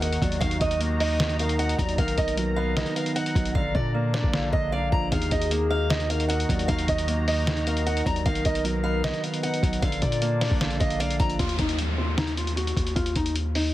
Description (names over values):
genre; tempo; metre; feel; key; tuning
hip hop, trap; 153 BPM; 4/4; half-time; Eb harmonic minor; A4 = 439 Hz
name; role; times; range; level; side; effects
fingerpicked steel-string acoustic guitar; melody; 0.0-13.7 s; Eb4 to Bb5; -30 LUFS; right 1 dB; low-pass filter, ping-pong delay
hollow clarinet-like synth lead; second line; 0.0-11.4 s; Ab4 to F5; -32 LUFS; left 4 dB; chorus, ping-pong delay
felt-muted upright piano; accompaniment; 0.0-11.4 s; D3 to Eb5; -29 LUFS; right 4 dB; none
sweeping resonant pad; sustained chords; 0.0-11.4 s; Eb3 to Bb5; -35 LUFS; left 1 dB; chorus
long sustained 808-style bass; bass; 0.0-13.7 s; Bb1 to Bb2; -28 LUFS; equal; none
lo-fi sampler-style drum kit; drums; 0.0-13.6 s; hi-hat, kick drum, snare drum; -28 LUFS; equal; none
impact and downlifter; sound effects; 0.0-0.4, 11.4-13.7 s; none; -35 LUFS; left 1 dB; none
room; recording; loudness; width
little or no reverb; heavily compressed radio sound, multiband compression; -22 LUFS; side -15 dB against mid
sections
0.0-11.4 A section; 11.4-13.7 B section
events
impact 0.0-0.4; hi-hats muted 3.6-5.1; filter sweep on steel-string acoustic guitar 11.4-13.7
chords
0.0 Ebm; 2.0 Bmaj7; 3.6 Bb; 5.1 Ebm; 8.3 Bmaj7; 9.8 Bb; 11.4 N.C.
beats
0.02 | 0.41 0.81 1.20 1.59 | 1.98 2.38 2.77 3.16 | 3.55 3.94 4.33 4.73 | 5.12 5.51 5.90 6.30 | 6.69 7.08 7.47 7.87 | 8.26 8.65 9.04 9.43 | 9.83 10.22 10.61 11.00 | 11.39 11.79 12.18 12.57 | 12.96 13.36